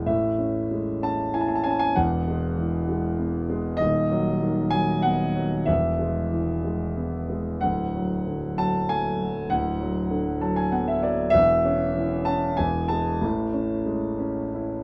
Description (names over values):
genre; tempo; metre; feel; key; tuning
classical, lyrical solo piano; 86-100 BPM; 3/4; rubato; A major; A4 = 442 Hz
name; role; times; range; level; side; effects
dark concert grand piano; solo; 0.0-14.8 s; D1 to A5; -25 LUFS; equal; none
room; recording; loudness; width
light reverb; none; -25 LUFS; mono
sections
0.1-14.8 A section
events
grand piano fill 10.1-11.3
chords
0.1 Amaj7; 2.0 Eadd9; 3.8 B/D#; 5.7 E; 7.6 D; 9.5 Bm/D; 11.3 A/E; 12.6 E; 13.2 Amaj7